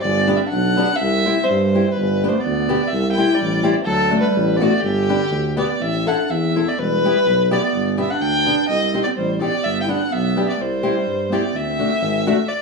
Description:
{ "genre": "alpine folk, alpine dance band", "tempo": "126 BPM", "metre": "2/4", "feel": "rubato", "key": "G major", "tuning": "A4 = 441 Hz", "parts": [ { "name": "dark fiddle", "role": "melody", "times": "0.0-12.6 s", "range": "G4 to G5", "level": "-20 LUFS", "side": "left 1 dB", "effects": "plate reverb" }, { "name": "warm clarinet", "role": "second line", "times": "0.0-12.5 s", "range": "D3 to E4", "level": "-24 LUFS", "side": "right 6 dB", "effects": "none" }, { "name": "warm tuba", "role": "bass", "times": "0.0-12.3 s", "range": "E1 to G2", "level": "-22 LUFS", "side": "equal", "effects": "none" }, { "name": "fingerpicked old ladder-braced acoustic guitar", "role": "accompaniment", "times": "0.3-12.4 s", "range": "A3 to A4", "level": "-21 LUFS", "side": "left 4 dB", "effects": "none" } ], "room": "moderate studio reverb, RT60 0.7 s", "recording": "small room ambience", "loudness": "-16 LUFS", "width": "side -3 dB against mid", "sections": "0.0-5.8 A section; 5.8-12.6 B section", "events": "none", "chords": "0.1 G; 1.0 C; 2.0 G; 2.9 C; 3.9 D; 4.8 G; 5.8 Am; 6.8 Em; 7.7 G; 8.7 Cm; 9.7 G; 10.6 C; 11.5 D7", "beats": "| 0.05 0.53 | 1.01 1.49 | 1.98 2.46 | 2.94 3.41 | 3.88 4.36 | 4.84 5.33 | 5.82 6.31 | 6.79 7.26 | 7.73 8.21 | 8.69 9.17 | 9.65 10.13 | 10.60 11.07 | 11.54 12.01 | 12.49" }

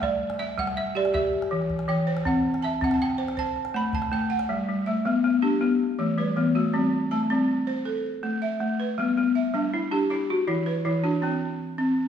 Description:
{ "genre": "west african traditional, West African string and xylophone music", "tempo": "107 BPM (dotted quarters)", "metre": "12/8", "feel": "straight", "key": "G major", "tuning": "A4 = 440 Hz", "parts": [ { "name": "balafon", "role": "melody", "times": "0.0-11.6 s", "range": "G3 to B5", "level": "-26 LUFS", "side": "left 2 dB", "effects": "none" }, { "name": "balafon", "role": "arpeggios", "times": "0.0-12.1 s", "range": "E3 to A5", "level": "-26 LUFS", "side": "right 1 dB", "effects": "none" }, { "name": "calabash", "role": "percussion", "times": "0.0-4.5 s", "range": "none", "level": "-36 LUFS", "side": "equal", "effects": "none" } ], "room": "wet recital hall reverb, RT60 1.4 s", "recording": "recorded in a church or concert hall", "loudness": "-23 LUFS", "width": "side -8 dB against mid", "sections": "0.0-4.5 A section; 4.5-12.1 B section", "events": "balafon solo 0.0-4.5", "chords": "0.0 G5; 1.1 Em; 2.3 C5; 3.4 Am; 4.5 Gmaj13; 5.6 E5; 6.7 C5; 7.9 A5; 9.0 G; 10.1 E5; 11.2 N.C.", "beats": "| 0.02 0.58 1.14 1.70 | 2.26 2.82 3.38 3.94 | 4.50 5.06 5.62 6.18 | 6.74 7.30 7.86 8.42 | 8.98 9.54 10.10 10.66 | 11.23 11.79" }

